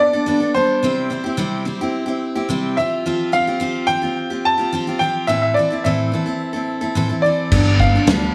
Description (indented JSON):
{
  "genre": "folk rock and heartland rock",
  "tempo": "108 BPM",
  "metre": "4/4",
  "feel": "straight",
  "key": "C major",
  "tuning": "A4 = 440 Hz",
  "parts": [
    { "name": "clear grand piano", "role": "melody", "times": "0.0-8.3 s", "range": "C5 to A5", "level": "-22 LUFS", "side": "equal", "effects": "digital delay" },
    { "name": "picked steel-string acoustic guitar", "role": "accompaniment", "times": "0.0-8.3 s", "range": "A2 to A4", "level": "-22 LUFS", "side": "equal", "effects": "none" },
    { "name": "fingered electric bass", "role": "bass", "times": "7.5-8.3 s", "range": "G1 to D2", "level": "-19 LUFS", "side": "equal", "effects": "none" },
    { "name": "loose indie drum kit", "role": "drums", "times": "7.5-8.2 s", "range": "crash cymbal, kick drum, ride cymbal, snare drum", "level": "-20 LUFS", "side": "equal", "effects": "none" }
  ],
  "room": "light reverb, small room ambience",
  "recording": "none",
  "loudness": "-19 LUFS",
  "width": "mono",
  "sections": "0.0-8.3 A section",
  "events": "none",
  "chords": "0.0 Gadd9; 0.8 C; 2.8 Fsus2; 5.3 Am; 7.5 Gadd9"
}